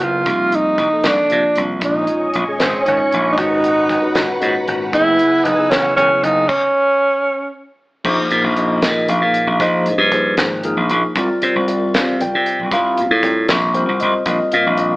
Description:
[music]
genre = electric jazz fusion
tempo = 77 BPM (dotted quarters)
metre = 6/8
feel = straight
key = unclear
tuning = A4 = 440 Hz
[part]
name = breathy tenor saxophone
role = melody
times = 0.0-7.5 s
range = C4 to F4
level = -15 LUFS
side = right 1 dB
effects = none
[part]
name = tine electric piano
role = accompaniment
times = 0.0-15.0 s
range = Bb2 to G5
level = -20 LUFS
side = left 1 dB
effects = medium tremolo, phaser
[part]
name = slap bass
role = bass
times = 0.0-15.0 s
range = Fb1 to C3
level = -18 LUFS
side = equal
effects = none
[part]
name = damped 70s drum kit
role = drums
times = 0.0-14.9 s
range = crash cymbal, hi-hat, kick drum, snare drum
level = -21 LUFS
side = equal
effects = none
[part]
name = string machine, violins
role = sustained chords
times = 1.8-6.5 s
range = Cb5 to Fb6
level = -23 LUFS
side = equal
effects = ensemble chorus
[sound]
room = moderate large studio reverb, RT60 0.9 s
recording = band playing live in one room, AM radio sound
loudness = -14 LUFS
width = side -21 dB against mid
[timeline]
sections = 0.0-8.1 A section; 8.1-15.0 B section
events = stop 6.5-8.1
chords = 0.3 Cm11; 1.8 Bbm7; 3.4 Abm11; 4.9 Gb9sus4; 6.5 N.C.; 8.1 Bb9sus4; 11.2 C9sus4; 14.3 Bbsus4

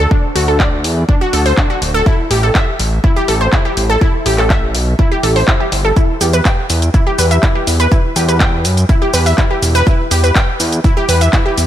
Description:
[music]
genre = progressive house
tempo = 123 BPM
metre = 4/4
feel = straight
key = E minor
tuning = A4 = 440 Hz
[part]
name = wide unison pluck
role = arpeggios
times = 0.0-11.5 s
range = D4 to G5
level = -16 LUFS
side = equal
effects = sidechain pumping, dub echo
[part]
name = fat analog bass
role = bass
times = 0.0-11.7 s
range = D1 to F#2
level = -14 LUFS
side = equal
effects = tube saturation, sidechain pumping
[part]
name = electronic kick drum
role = drums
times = 0.1-11.4 s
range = none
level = -13 LUFS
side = equal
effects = none
[part]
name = house drum kit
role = drums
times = 0.4-11.7 s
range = handclaps, hi-hat, shaker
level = -19 LUFS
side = equal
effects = sidechain pumping on hats, sidechain pumping on perc
[sound]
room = light reverb, digital ambience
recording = none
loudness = -11 LUFS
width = side -11 dB against mid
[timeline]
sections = 0.0-11.7 A section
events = none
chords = 0.0 D; 2.1 A7(no3); 6.0 Em

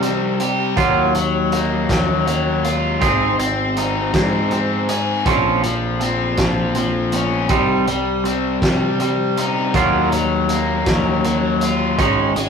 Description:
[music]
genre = indie rock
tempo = 54 BPM (dotted quarters)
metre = 6/8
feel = straight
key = unclear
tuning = A4 = 438 Hz
[part]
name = crunchy overdriven guitar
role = riff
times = 0.0-12.5 s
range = F3 to Ab4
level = -19 LUFS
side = left 4 dB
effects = none
[part]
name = twangy electric guitar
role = riff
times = 0.0-12.5 s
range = F3 to Ab4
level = -22 LUFS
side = right 6 dB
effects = none
[part]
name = fuzz picked electric bass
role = bass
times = 0.0-12.5 s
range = Ab1 to C3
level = -22 LUFS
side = equal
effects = overdrive
[part]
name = loose indie drum kit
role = drums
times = 0.0-12.5 s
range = hi-hat, kick drum, snare drum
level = -22 LUFS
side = equal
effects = none
[sound]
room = moderate studio reverb, RT60 0.6 s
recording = rough rehearsal-room recording, warm saturation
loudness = -16 LUFS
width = side -6 dB against mid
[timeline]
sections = 0.0-12.5 A section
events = none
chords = 0.0 Cm; 0.8 Ebmadd9; 3.0 Ab; 5.3 Bbmadd9; 7.5 Cm; 9.7 Ebmadd9; 12.0 Absus4

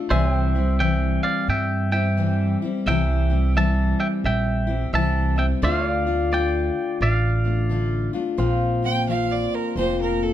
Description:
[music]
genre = honky-tonk and classic country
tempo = 87 BPM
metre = 4/4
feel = swing 63% on 8ths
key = D minor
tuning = A4 = 439 Hz
[part]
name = picked steel-string acoustic guitar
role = accompaniment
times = 0.0-10.3 s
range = Bb2 to F4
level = -24 LUFS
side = left 4 dB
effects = none
[part]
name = pedal steel guitar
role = sustained chords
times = 0.0-10.3 s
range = C5 to G5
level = -31 LUFS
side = right 1 dB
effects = none
[part]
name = twangy electric guitar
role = melody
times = 0.1-8.1 s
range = C5 to A5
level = -26 LUFS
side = right 1 dB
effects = none
[part]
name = upright bass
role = bass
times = 0.1-10.3 s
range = F1 to G2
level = -22 LUFS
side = right 1 dB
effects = none
[part]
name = clear fiddle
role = second line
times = 8.8-10.3 s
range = A4 to G5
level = -25 LUFS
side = right 6 dB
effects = none
[sound]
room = light reverb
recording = dark, warm production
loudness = -19 LUFS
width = side -11 dB against mid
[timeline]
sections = 0.0-8.4 A section; 8.4-10.3 B section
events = fiddle solo 8.4-10.3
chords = 0.1 C; 5.6 Dm; 8.4 Bbsus2

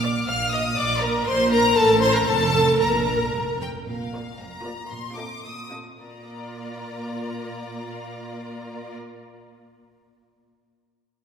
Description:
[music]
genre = quick classical-period movement for string orchestra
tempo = 103-122 BPM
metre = 2/4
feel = rubato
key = Bb major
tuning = A4 = 445 Hz
[part]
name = clear symphonic violin section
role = melody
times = 0.0-8.9 s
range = F5 to F6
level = -26 LUFS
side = left 3 dB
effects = none
[part]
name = warm symphonic violin section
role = second line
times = 0.0-9.0 s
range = A4 to F5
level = -26 LUFS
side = left 1 dB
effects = none
[part]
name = warm symphonic viola section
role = accompaniment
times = 0.0-8.9 s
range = Bb3 to F5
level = -27 LUFS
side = right 1 dB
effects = none
[part]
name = warm symphonic cello section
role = bass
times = 0.0-8.9 s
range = F2 to Bb2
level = -30 LUFS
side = right 3 dB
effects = none
[part]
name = warm symphonic double bass section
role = bass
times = 0.0-3.8 s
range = F1 to Bb1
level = -30 LUFS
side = right 3 dB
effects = none
[sound]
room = wet church reverb, RT60 2.6 s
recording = recorded in a church or concert hall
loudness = -19 LUFS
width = side -7 dB against mid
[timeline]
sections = 0.0-3.9 A section; 3.9-6.0 B section; 6.0-8.2 C section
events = slowing down 3.3-6.0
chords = 0.0 Bb; 1.8 Am; 2.3 F; 2.8 Bb5; 3.9 Bb; 4.9 F7/Bb; 6.0 Bb

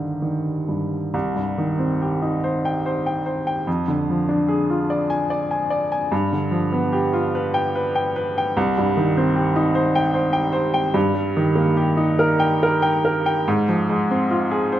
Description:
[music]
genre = classical, romantic nocturne for solo piano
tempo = 42-52 BPM (dotted quarters)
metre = 12/8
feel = rubato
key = C minor, Eb major from 11.0 s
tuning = A4 = 440 Hz
[part]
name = clear upright piano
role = solo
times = 0.0-14.8 s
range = C2 to Ab5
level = -18 LUFS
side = equal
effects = none
[sound]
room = moderate scoring stage reverb, RT60 1.7 s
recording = none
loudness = -18 LUFS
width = side -12 dB against mid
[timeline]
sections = 0.0-1.1 A section; 1.1-14.8 B section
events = none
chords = 0.0 Cm; 3.7 Ddim/F; 6.1 G7; 8.6 Cm; 11.0 Eb/G; 13.5 Fm/Ab

